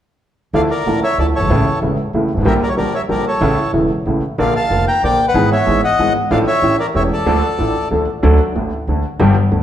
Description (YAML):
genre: tango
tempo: 187 BPM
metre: 3/4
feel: rubato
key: D harmonic minor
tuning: A4 = 440 Hz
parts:
  - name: bandoneon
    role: melody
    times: 0.5-7.9 s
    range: A4 to Bb5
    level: -17 LUFS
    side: left 1 dB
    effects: none
  - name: warm concert grand piano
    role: accompaniment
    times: 0.5-9.6 s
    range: E1 to A4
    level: -16 LUFS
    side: equal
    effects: none
  - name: upright bass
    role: bass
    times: 0.5-9.6 s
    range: E1 to D2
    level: -20 LUFS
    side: right 1 dB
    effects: none
room: wet large studio reverb, RT60 1.5 s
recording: band playing live in one room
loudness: -13 LUFS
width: side -11 dB against mid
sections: 0.5-8.2 A section; 8.2-9.6 B section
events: none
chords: 0.5 Dmadd9; 1.5 A; 2.5 Gm/Bb; 3.4 A; 4.4 Bb; 5.3 E/G#; 6.3 Dm/A; 6.6 A7; 7.3 Dm; 8.2 D